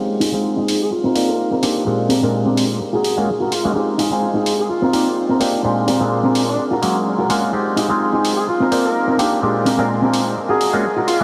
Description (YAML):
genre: filtered disco house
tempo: 127 BPM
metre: 4/4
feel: swing 55% on 16ths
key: F dorian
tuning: A4 = 440 Hz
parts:
  - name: clav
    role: accompaniment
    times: 0.0-11.2 s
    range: Bb2 to F5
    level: -21 LUFS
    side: equal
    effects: phaser, low-pass filter
  - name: electric guitar at the edge of break-up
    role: riff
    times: 0.2-11.2 s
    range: C4 to Bb4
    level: -23 LUFS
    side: equal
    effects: low-pass filter
  - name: electronic hi-hat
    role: drums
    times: 0.2-11.2 s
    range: none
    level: -30 LUFS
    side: equal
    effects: none
  - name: bright horn section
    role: melody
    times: 0.8-11.2 s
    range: D4 to Bb4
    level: -26 LUFS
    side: equal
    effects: low-pass filter
room: wet huge ambient reverb, RT60 7.3 s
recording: dreamy mix soaked in reverb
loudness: -18 LUFS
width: mono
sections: 0.0-11.2 A section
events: filter sweep 0.0-11.2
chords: 0.0 Fm7; 0.9 Cm7; 1.9 Bb13; 2.8 Gbmaj7; 3.8 Fm7; 4.7 Cm7; 5.6 Bb13; 6.6 Gbmaj7; 7.5 Fm7; 8.5 Cm7; 9.4 Bb13; 10.4 Gbmaj7